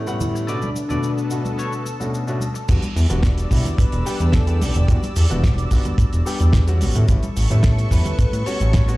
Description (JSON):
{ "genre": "nu-disco, nu disco", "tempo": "109 BPM", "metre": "4/4", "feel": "straight", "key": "E dorian", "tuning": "A4 = 439 Hz", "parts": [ { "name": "soft octave-layered synth lead", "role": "melody", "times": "0.0-9.0 s", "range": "D4 to C#5", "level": "-29 LUFS", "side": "left 2 dB", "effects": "chorus, tape echo" }, { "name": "warm grand piano", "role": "accompaniment", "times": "0.0-9.0 s", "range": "A2 to F#5", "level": "-27 LUFS", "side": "left 1 dB", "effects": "sidechain pumping, slapback echo" }, { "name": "lush unison pad", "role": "sustained chords", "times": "0.0-9.0 s", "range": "G3 to E6", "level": "-33 LUFS", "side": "equal", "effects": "chorus, phaser, sidechain pumping" }, { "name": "damped 70s drum kit", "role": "drums", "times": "0.1-9.0 s", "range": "cabasa, crash cymbal, hi-hat, snare drum", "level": "-28 LUFS", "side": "right 1 dB", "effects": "none" }, { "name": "cabasa and congas", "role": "percussion", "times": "0.2-9.0 s", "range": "none", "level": "-29 LUFS", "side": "right 2 dB", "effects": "none" }, { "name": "clean electric guitar", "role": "riff", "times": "0.3-2.6 s", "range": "A4 to D5", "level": "-32 LUFS", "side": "left 1 dB", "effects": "wide subtle chorus, vintage 12-bit sampler grit, low-pass filter, slapback echo" }, { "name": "fat analog bass", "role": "bass", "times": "2.7-9.0 s", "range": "E1 to A2", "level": "-18 LUFS", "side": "equal", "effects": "none" }, { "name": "kick drum", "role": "drums", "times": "2.7-8.9 s", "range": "none", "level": "-18 LUFS", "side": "equal", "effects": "none" } ], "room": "small room ambience", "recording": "played on a big sound system in a bare room, large studio reverb", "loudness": "-17 LUFS", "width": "side -19 dB against mid", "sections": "0.0-2.7 A section; 2.7-9.0 B section", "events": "filter sweep on analog synth pad 0.0-2.7; drop 2.7-9.0", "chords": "0.5 Bm7; 2.7 Em7; 6.8 A7", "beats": "| 0.48 1.03 1.58 2.13 | 2.69 3.24 3.79 4.34 | 4.89 5.44 5.99 6.54 | 7.09 7.64 8.19 8.74" }